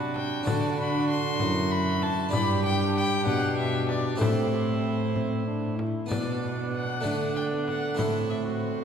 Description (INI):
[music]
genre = classical, renaissance-style consort dance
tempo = 64 BPM (dotted quarters)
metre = 6/8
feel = straight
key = A dorian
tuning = A4 = 440 Hz
[part]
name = warm violin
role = melody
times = 0.0-8.8 s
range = C5 to C6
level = -32 LUFS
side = left 3 dB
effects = none
[part]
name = warm cor anglais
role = second line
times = 0.0-8.8 s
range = D4 to G4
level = -34 LUFS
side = right 3 dB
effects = none
[part]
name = clear trombone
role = accompaniment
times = 0.0-8.8 s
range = A3 to E4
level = -33 LUFS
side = left 1 dB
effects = none
[part]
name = harpsichord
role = accompaniment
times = 0.0-8.8 s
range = F#2 to D5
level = -33 LUFS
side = right 1 dB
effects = none
[part]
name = warm cello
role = bass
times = 0.0-8.8 s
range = F#2 to D3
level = -29 LUFS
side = right 2 dB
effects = none
[part]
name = frame drum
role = percussion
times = 0.2-8.3 s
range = none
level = -34 LUFS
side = left 3 dB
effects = none
[sound]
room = wet cathedral reverb, RT60 3.9 s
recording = heard from further back in the room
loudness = -24 LUFS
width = side -7 dB against mid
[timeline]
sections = 0.0-6.1 A section; 6.1-8.8 B section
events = none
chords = 0.5 D; 2.3 G; 4.2 Am; 6.1 Bm; 7.0 D5; 8.0 Am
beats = | 0.47 1.40 | 2.33 3.27 | 4.21 5.16 | 6.11 7.05 | 7.98